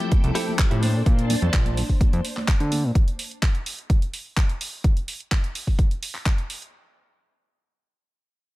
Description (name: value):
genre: filtered disco house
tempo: 127 BPM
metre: 4/4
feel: straight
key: unclear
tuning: A4 = 440 Hz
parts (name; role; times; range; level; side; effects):
- bell-like tine electric piano; accompaniment; 0.0-0.8 s; F3 to G4; -30 LUFS; left 2 dB; medium stereo tremolo, phaser, sidechain pumping, low-pass filter
- phased string machine; sustained chords; 0.0-2.9 s; D4 to A5; -33 LUFS; equal; ensemble chorus, phaser, sidechain pumping, low-pass filter
- house drum kit; drums; 0.0-6.7 s; handclaps, hi-hat; -30 LUFS; right 1 dB; sidechain pumping on hats, sidechain pumping on perc
- tambourine and congas; percussion; 0.0-2.9 s; none; -32 LUFS; right 2 dB; none
- direct-recorded clean electric guitar; riff; 0.1-1.0 s; D4 to C5; -30 LUFS; left 2 dB; sidechain pumping, low-pass filter
- fat analog bass; bass; 0.1-2.9 s; Bb1 to D3; -22 LUFS; equal; sidechain pumping, low-pass filter
- electronic kick drum; drums; 0.1-6.4 s; none; -19 LUFS; equal; none
room: digital ambience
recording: none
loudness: -20 LUFS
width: side -18 dB against mid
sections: 0.0-6.7 A section; 6.7-8.6 B section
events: none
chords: 0.0 Fmaj9; 0.8 Bbmaj9; 3.0 N.C.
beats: 0.12 0.59 | 1.06 1.53 2.01 2.48 | 2.95 3.42 3.90 4.37 | 4.84 5.31 5.79 6.26